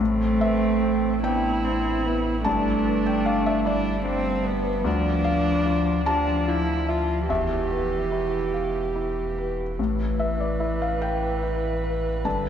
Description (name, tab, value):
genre	neoclassical piano and strings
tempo	49 BPM (dotted quarters)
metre	6/8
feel	rubato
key	A minor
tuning	A4 = 437 Hz
part	warm cello	second line	0.0-12.5 s	D3 to C4	-28 LUFS	right 4 dB	none
part	felt-muted upright piano	accompaniment	0.0-12.5 s	D2 to A5	-26 LUFS	left 3 dB	none
part	rich viola	accompaniment	0.0-12.5 s	B3 to B4	-27 LUFS	right 1 dB	none
part	pure sine sub bass	bass	0.0-12.5 s	E1 to D2	-29 LUFS	equal	none
room	wet cathedral reverb, RT60 4.9 s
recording	recorded in a church or concert hall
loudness	-22 LUFS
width	side -8 dB against mid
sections	0.0-12.5 A section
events	none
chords	0.0 Amadd9; 2.5 Gadd9; 4.9 Dmadd9; 7.3 Em; 9.8 Asus2